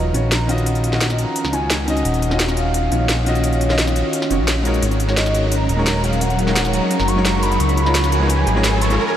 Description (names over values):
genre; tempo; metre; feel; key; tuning
liquid drum and bass; 173 BPM; 4/4; straight; Eb minor; A4 = 440 Hz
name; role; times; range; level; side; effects
warm velvety synth lead; melody; 0.0-9.2 s; Db5 to Db6; -24 LUFS; equal; chorus, diffuse ambient delay
warm concert grand piano; accompaniment; 0.0-9.0 s; Eb3 to Eb5; -22 LUFS; left 1 dB; tape echo
shimmering ambient pad; sustained chords; 0.0-9.0 s; F3 to Cb5; -25 LUFS; equal; chorus, built-in reverb, phaser
smooth synth bass; bass; 0.0-9.0 s; Eb1 to Db2; -19 LUFS; equal; none
drum and bass drum kit; drums; 0.1-9.0 s; hi-hat, snare drum; -23 LUFS; equal; high-pass filter on hats, studio reverb, high-pass filter on snare
riser; sound effects; 6.5-9.2 s; none; -27 LUFS; right 3 dB; none
room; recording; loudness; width
wet huge ambient reverb, RT60 8.2 s; dreamy mix soaked in reverb; -15 LUFS; side -10 dB against mid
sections
0.0-9.2 A section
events
build-up 0.0-9.2; riser 6.5-9.2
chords
0.0 Ebm9; 4.8 Ab9sus4; 7.6 Db7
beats
0.32 | 0.66 1.01 1.36 1.70 | 2.05 2.40 2.74 3.09 | 3.44 3.79 4.13 4.48 | 4.83 5.17 5.52 5.87 | 6.21 6.56 6.91 7.25 | 7.60 7.95 8.29 8.64 | 8.99